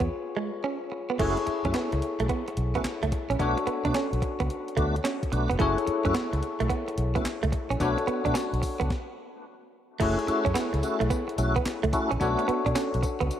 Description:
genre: R&B, new jack swing.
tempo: 109 BPM.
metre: 4/4.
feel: swing 66% on 16ths.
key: F# minor.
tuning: A4 = 440 Hz.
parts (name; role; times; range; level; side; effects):
bell-like tine electric piano; accompaniment; 0.0-13.4 s; D4 to C#5; -31 LUFS; left 4 dB; wide subtle chorus.
direct-recorded clean electric guitar; riff; 0.0-13.3 s; G#3 to D4; -31 LUFS; right 6 dB; lush chorus.
vintage muted fingered electric bass; bass; 0.0-13.3 s; E#1 to B2; -29 LUFS; equal; none.
crisp 8-bit digital drum machine; drums; 0.0-13.4 s; crash cymbal, handclaps, hi-hat, kick drum, snare drum, tambourine; -32 LUFS; equal; overdrive.
tonewheel organ; stabs; 1.2-12.5 s; A3 to F#4; -32 LUFS; left 1 dB; overdrive, chorus vibrato, slow rotary speaker, analog delay.
room: moderate plate reverb, RT60 2.5 s.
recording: dreamy mix soaked in reverb.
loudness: -25 LUFS.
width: side -10 dB against mid.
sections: 0.0-1.2 A section; 1.2-10.0 B section; 10.0-13.4 C section.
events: break 0.1-1.2; stop 8.9-10.0.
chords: 0.0 C#7; 1.2 F#m7; 3.4 Bm7; 5.6 F#m7; 7.8 Bm7; 10.0 F#m7; 12.2 Bm7.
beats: 0.10 0.65 | 1.20 1.75 2.30 2.85 | 3.40 3.95 4.50 5.05 | 5.60 6.15 6.70 7.25 | 7.80 8.35 8.90 9.45 | 10.00 10.55 11.10 11.65 | 12.21 12.76 13.31.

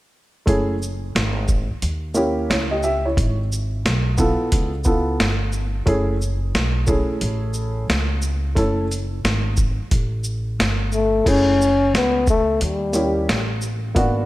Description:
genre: hip hop, jazz-hop.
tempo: 89 BPM.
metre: 4/4.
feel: swing 64% on 16ths.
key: F# dorian.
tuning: A4 = 441 Hz.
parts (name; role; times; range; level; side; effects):
dark upright piano; accompaniment; 0.5-14.3 s; A3 to E5; -23 LUFS; right 1 dB; none.
upright bass; bass; 0.5-14.3 s; F#1 to D#2; -23 LUFS; equal; none.
boom bap sampler-style drum kit; drums; 0.5-14.2 s; crash cymbal, hi-hat, kick drum, shaker, snare drum; -22 LUFS; equal; none.
breathy trombone; melody; 10.9-13.6 s; G3 to C#4; -18 LUFS; left 2 dB; none.
room: light reverb, small room ambience.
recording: none.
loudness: -18 LUFS.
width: side -17 dB against mid.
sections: 0.5-11.3 A section; 11.3-14.3 B section.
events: none.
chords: 0.5 F#m7; 1.8 D#7b9; 3.2 Amaj9/G#; 4.5 C#7alt; 5.9 F#m7; 12.6 D#7b9.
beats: | 0.48 1.15 1.82 2.50 | 3.17 3.85 4.52 5.20 | 5.87 6.54 7.22 7.89 | 8.57 9.24 9.91 10.59 | 11.26 11.94 12.61 13.29 | 13.96.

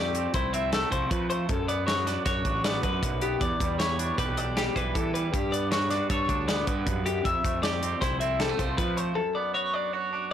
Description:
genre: math rock and midwest emo.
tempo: 156 BPM.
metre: 5/4.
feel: straight.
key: D major.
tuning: A4 = 441 Hz.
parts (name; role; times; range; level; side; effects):
twangy electric guitar; accompaniment; 0.0-10.3 s; E2 to A4; -32 LUFS; right 9 dB; none.
twelve-string electric guitar; arpeggios; 0.0-10.3 s; G4 to E5; -29 LUFS; left 5 dB; plate reverb.
fuzz picked electric bass; bass; 0.0-9.1 s; A1 to F3; -31 LUFS; equal; overdrive.
modern studio drum kit; drums; 0.1-9.1 s; hi-hat, kick drum, snare drum; -30 LUFS; equal; none.
room: light reverb.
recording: blown-out, overdriven recording, overdrive.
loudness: -25 LUFS.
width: side -9 dB against mid.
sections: 0.0-10.3 A section.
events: none.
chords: 0.0 Fmaj7; 1.5 D6/F#; 3.4 Em7; 5.3 Gmaj9; 7.2 Fmaj7; 9.2 D6/F#.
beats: 0.34 0.72 1.11 | 1.49 1.88 2.26 2.64 3.03 | 3.41 3.79 4.18 4.56 4.95 | 5.33 5.71 6.10 6.48 6.87 | 7.25 7.63 8.02 8.40 8.78 | 9.16 9.54 9.93 10.31.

